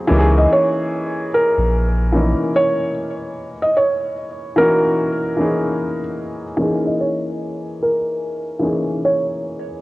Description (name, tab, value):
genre	hip hop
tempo	74 BPM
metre	4/4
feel	swing 63% on 16ths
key	C# dorian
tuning	A4 = 441 Hz
part	warm upright piano	accompaniment	0.0-9.8 s	E3 to A#4	-20 LUFS	left 1 dB	low-pass filter, cassette tape
part	warm sub bass	bass	0.1-2.3 s	A#1 to C#2	-16 LUFS	equal	none
part	felt-muted upright piano	melody	0.4-9.4 s	A#4 to D#5	-19 LUFS	right 1 dB	low-pass filter, cassette tape, tape echo
room	moderate lush hall reverb, RT60 2.3 s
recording	home recording on cassette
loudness	-16 LUFS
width	side -19 dB against mid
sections	0.0-6.6 A section; 6.6-9.8 B section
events	break 3.3-6.6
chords	0.1 C#m69